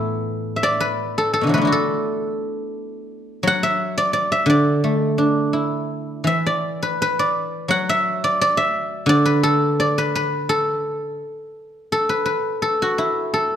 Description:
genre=chinese traditional, Chinese solo plucked strings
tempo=85 BPM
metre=2/4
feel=uneven beats, rubato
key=A zhi mode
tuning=A4 = 438 Hz
part: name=guzheng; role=solo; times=0.0-13.6 s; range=A2 to F#5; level=-18 LUFS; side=equal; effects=none
room=moderate recital hall reverb, RT60 1.4 s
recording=dark, warm production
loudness=-18 LUFS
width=side -9 dB against mid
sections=0.6-11.9 A section; 11.9-13.6 B section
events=none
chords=none

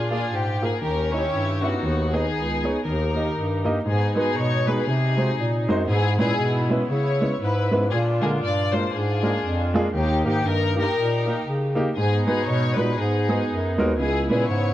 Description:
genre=uptempo gospel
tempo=118 BPM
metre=4/4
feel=swing 62% on 8ths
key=G# minor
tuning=A4 = 440 Hz
part: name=warm studio string section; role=melody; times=0.0-14.7 s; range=A#3 to D5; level=-25 LUFS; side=left 2 dB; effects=none
part: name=warm baby grand piano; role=accompaniment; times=0.0-14.7 s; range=G#2 to E5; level=-25 LUFS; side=right 1 dB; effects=none
part: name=mellow bass clarinet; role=bass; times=0.0-14.7 s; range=C#2 to D3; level=-24 LUFS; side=equal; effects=none
room=light reverb, small room ambience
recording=dark, warm production, nothing above 10.6 kHz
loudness=-20 LUFS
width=side -13 dB against mid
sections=0.0-3.9 A section; 3.9-14.7 B section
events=none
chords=0.0 A#7; 0.8 D#7b9; 1.8 G#m/D#; 2.8 D#; 3.9 G#m7; 4.9 G#7/B#; 5.9 C#m7/G#; 7.9 A#7; 9.9 D#; 12.0 G#m7; 14.0 C#m7

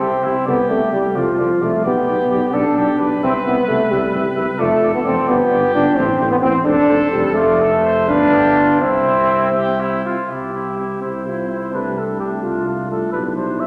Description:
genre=classical, brass quintet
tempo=80-89 BPM (dotted quarters)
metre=6/8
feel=rubato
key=C major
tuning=A4 = 440 Hz
part: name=warm cornet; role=melody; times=0.0-13.7 s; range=F4 to F5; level=-28 LUFS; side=equal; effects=none
part: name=clear trumpet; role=second line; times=0.0-13.7 s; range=D4 to C5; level=-27 LUFS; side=equal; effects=none
part: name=warm French horn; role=accompaniment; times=0.0-13.7 s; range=E4 to C5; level=-27 LUFS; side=equal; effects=none
part: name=warm trombone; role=accompaniment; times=0.0-13.7 s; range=F3 to D4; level=-19 LUFS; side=equal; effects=none
part: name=mellow tuba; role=bass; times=0.0-13.7 s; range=F1 to C2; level=-26 LUFS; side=equal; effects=none
room=wet scoring stage reverb, RT60 1.5 s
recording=none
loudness=-17 LUFS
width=mono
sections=0.0-10.3 A section; 10.3-13.7 A section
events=none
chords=0.5 Dm7/C; 1.9 G/B; 3.2 C; 4.6 Dm/F; 5.3 G7; 6.0 Am; 6.7 F; 7.4 Dm/F; 8.1 G7; 8.8 C; 11.7 Dm7/C; 13.1 G/B

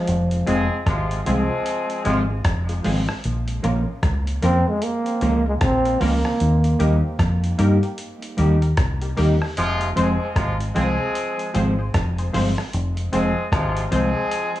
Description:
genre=roots reggae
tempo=76 BPM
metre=4/4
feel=swing 61% on 16ths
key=F minor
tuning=A4 = 439 Hz
part: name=breathy trombone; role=melody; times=0.0-6.8 s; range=F3 to C4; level=-23 LUFS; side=right 1 dB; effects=cassette tape, tape echo
part: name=deep dub fingered electric bass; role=bass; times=0.1-14.1 s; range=F1 to G2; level=-21 LUFS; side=equal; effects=none
part: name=dusty soul sampler-style drum kit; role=drums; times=0.1-14.6 s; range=hi-hat, kick drum, rim click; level=-26 LUFS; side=equal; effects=cassette tape
part: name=warm horn section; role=second line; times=0.5-2.2, 9.6-14.6 s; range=C3 to Ab4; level=-25 LUFS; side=left 1 dB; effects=cassette tape, tape echo
part: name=mellow electric guitar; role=accompaniment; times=0.5-14.1 s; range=F3 to G4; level=-26 LUFS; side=right 2 dB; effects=cassette tape, tape echo
part: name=filtered dub chord stab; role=stabs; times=0.5-14.2 s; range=Ab3 to C5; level=-28 LUFS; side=left 5 dB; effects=chorus, cassette tape
room=light reverb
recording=home recording on cassette, studio reverb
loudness=-18 LUFS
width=side -14 dB against mid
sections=0.0-14.6 A section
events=none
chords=0.0 Fm; 3.2 Bbm; 6.4 Eb; 9.6 Fm

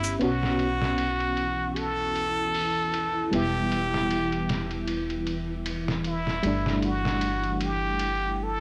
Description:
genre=trip hop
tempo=77 BPM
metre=4/4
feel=swing 57% on 16ths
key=B minor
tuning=A4 = 440 Hz
part: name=trumpet with plunger mute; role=melody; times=0.0-8.6 s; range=E4 to A4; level=-31 LUFS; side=equal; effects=tape echo
part: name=bright reed electric piano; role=accompaniment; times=0.0-8.6 s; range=G3 to G4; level=-33 LUFS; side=equal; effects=tremolo, vintage 12-bit sampler grit, tape echo
part: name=upright bass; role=bass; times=0.0-8.6 s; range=E1 to B1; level=-36 LUFS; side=equal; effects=tube saturation
part: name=trip hop sampler-style drum kit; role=drums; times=0.0-8.2 s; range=hi-hat, ride cymbal, snare drum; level=-37 LUFS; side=equal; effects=low-pass filter on hats, low-pass filter on snare, low-pass filter on cymbals, low-pass filter on kick, low-pass filter on room
part: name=string machine, cellos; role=sustained chords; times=0.2-8.6 s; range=E3 to E4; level=-36 LUFS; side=equal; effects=ensemble chorus
room=light reverb, digital ambience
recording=dry, gritty hardware recording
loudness=-27 LUFS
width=mono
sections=0.2-8.6 A section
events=filter sweep on string machine 0.2-8.6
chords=0.2 Bsus2; 3.3 Em; 6.4 Gsus2

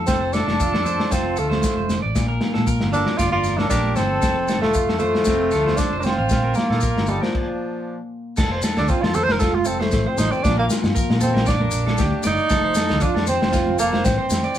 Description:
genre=highlife guitar band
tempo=116 BPM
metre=4/4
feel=swing 53% on 16ths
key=F major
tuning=A4 = 440 Hz
part: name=nylon-string guitar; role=accompaniment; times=0.0-14.6 s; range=F2 to A4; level=-30 LUFS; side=left 4 dB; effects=none
part: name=electric guitar at the edge of break-up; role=arpeggios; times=0.0-14.6 s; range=C4 to F5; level=-27 LUFS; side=right 3 dB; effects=vibrato effect
part: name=fingered electric bass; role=bass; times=0.0-14.4 s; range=F1 to Bb2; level=-25 LUFS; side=equal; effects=none
part: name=warm tenor saxophone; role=melody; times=0.1-14.6 s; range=F3 to C5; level=-22 LUFS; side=right 1 dB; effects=none
part: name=bright trumpet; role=second line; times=0.1-8.0 s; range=D4 to D5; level=-31 LUFS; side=left 2 dB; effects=none
part: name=crunchy breakbeat drum kit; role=drums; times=0.1-14.4 s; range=crash cymbal, kick drum, snare drum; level=-23 LUFS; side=left 1 dB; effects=none
part: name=maracas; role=percussion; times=0.1-14.6 s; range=none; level=-33 LUFS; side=left 4 dB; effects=none
part: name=congas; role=percussion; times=0.5-14.4 s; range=none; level=-31 LUFS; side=right 3 dB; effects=none
room=moderate studio ambience, RT60 0.5 s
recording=band playing live in one room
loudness=-18 LUFS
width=side -11 dB against mid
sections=0.0-8.4 A section; 8.4-14.6 B section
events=stop 7.3-8.4; tenor saxophone solo 8.4-14.6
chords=0.1 F; 2.1 Bb; 4.2 F; 6.3 Bb; 8.4 F; 10.4 Bb; 12.5 F

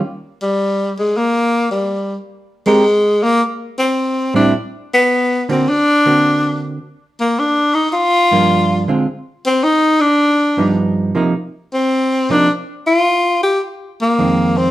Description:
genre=jazz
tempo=106 BPM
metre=4/4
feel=swing 67% on 8ths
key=unclear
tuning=A4 = 441 Hz
part: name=warm tenor saxophone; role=melody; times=0.4-14.7 s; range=G3 to G4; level=-13 LUFS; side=left 1 dB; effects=plate reverb
part: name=hollow-body jazz guitar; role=accompaniment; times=2.7-14.7 s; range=F2 to Bb4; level=-16 LUFS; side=right 2 dB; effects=none
room=wet studio reverb, RT60 0.6 s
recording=heard from further back in the room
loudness=-13 LUFS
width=side -15 dB against mid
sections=0.0-14.7 A section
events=none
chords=0.0 N.C.; 2.3 Abmaj9; 4.5 Daug7; 6.8 Gm7; 9.1 N.C.; 10.2 G7b13; 11.4 Cm7; 13.6 Fm7

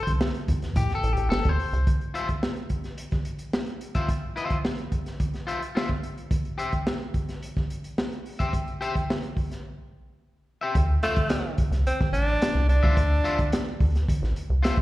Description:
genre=funk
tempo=108 BPM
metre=4/4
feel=straight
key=D minor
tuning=A4 = 441 Hz
part: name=electric guitar at the edge of break-up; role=accompaniment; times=0.0-14.8 s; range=F4 to E5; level=-30 LUFS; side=left 3 dB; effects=slapback echo
part: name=rubbery square bass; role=bass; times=0.1-1.8, 10.8-14.8 s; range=G1 to A2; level=-23 LUFS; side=equal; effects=none
part: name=crunchy breakbeat drum kit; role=drums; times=0.1-14.8 s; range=hi-hat, kick drum, snare drum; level=-26 LUFS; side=equal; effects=none
part: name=breathy tenor saxophone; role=melody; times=11.0-13.8 s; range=A3 to D4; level=-27 LUFS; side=equal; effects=slapback echo
room=small room reverb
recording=live gig heard through the venue's PA, recital hall reverb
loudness=-24 LUFS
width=side -17 dB against mid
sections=0.0-1.9 A section; 1.9-10.8 B section; 10.8-14.8 C section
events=clean electric guitar solo 0.0-1.9; break 9.6-10.8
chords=0.0 Am7; 1.9 F5; 6.3 Gsus4; 10.8 Dm9

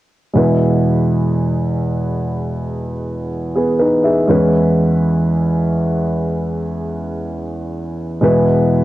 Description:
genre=pop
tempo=61 BPM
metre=4/4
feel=straight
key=E major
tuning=A4 = 440 Hz
part: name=warm grand piano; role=accompaniment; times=0.3-8.8 s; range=E2 to E5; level=-14 LUFS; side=equal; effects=cassette tape
room=light reverb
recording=home recording on cassette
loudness=-14 LUFS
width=side -16 dB against mid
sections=0.4-8.8 A section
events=none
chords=0.4 E; 4.3 C#m7/E; 8.2 E

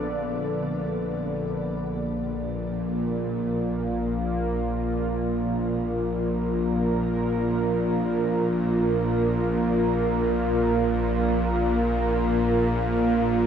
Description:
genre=dark ambient drone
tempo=free time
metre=none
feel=none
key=Bb major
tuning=A4 = 440 Hz
part: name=sweeping resonant pad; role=sustained chords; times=0.0-13.5 s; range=Bb3 to F5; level=-25 LUFS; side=right 1 dB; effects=chorus, shimmer reverb
part: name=bowed-like drone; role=drone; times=0.0-13.5 s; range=Bb1 to D3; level=-26 LUFS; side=equal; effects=built-in reverb
part: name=bubbling stepped-filter texture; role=texture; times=0.0-1.6 s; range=Cb4 to Cb5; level=-38 LUFS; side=left 1 dB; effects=chorus, built-in reverb, shimmer reverb
room=wet huge ambient reverb, RT60 8.2 s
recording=none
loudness=-22 LUFS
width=side -8 dB against mid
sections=0.0-1.6 A section; 1.6-13.5 B section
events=none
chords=0.0 Dm/Bb; 1.6 Bb

